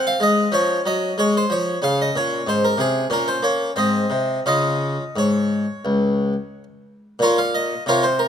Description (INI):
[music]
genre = classical, baroque-style suite movement for harpsichord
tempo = 85-94 BPM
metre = 4/4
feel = rubato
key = Db major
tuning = A4 = 440 Hz
[part]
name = harpsichord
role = solo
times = 0.0-8.3 s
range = Db2 to F5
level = -18 LUFS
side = equal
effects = none
[sound]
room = light reverb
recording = close, detailed microphones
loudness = -18 LUFS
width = side -8 dB against mid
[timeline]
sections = 0.0-7.2 A section; 7.2-8.3 A section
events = none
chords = 0.0 Ab; 0.5 Db/F; 1.8 Db5; 3.1 Bbmadd9; 3.8 Ab; 4.4 Db; 7.2 Bb5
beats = 0.52 1.16 | 1.80 2.45 3.09 3.75 | 4.45 5.15 5.85 6.53 | 7.21 7.87